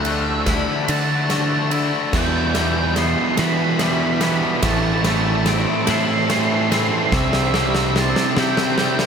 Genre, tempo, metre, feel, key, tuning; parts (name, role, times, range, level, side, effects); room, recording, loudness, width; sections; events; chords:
post-rock; 48 BPM (dotted quarters); 6/8; straight; E minor; A4 = 438 Hz
octave-fuzz lead guitar; melody; 0.0-9.1 s; E5 to D6; -24 LUFS; right 4 dB; distortion, diffuse ambient delay
clear studio string section; sustained chords; 0.0-9.1 s; B3 to A5; -32 LUFS; left 2 dB
twangy electric guitar; arpeggios; 0.0-9.1 s; E2 to F#4; -28 LUFS; left 2 dB; lush chorus, diffuse ambient delay
fuzz guitar; riff; 0.0-9.1 s; A2 to F#4; -23 LUFS; left 7 dB; distortion
growling picked electric bass; bass; 0.0-9.1 s; A1 to E3; -23 LUFS; equal; overdrive
huge arena drum kit; drums; 0.0-9.1 s; crash cymbal, kick drum, ride cymbal, snare drum; -23 LUFS; equal
crunchy overdriven guitar; riff; 2.1-9.1 s; E2 to C4; -24 LUFS; right 10 dB
wet huge ambient reverb, RT60 9.3 s; dreamy mix soaked in reverb; -16 LUFS; side -6 dB against mid
0.0-9.1 A section
build-up 0.0-9.1; drum fill 0.0-9.1
0.0 Dadd9; 2.1 Emadd9; 4.6 Am; 7.1 C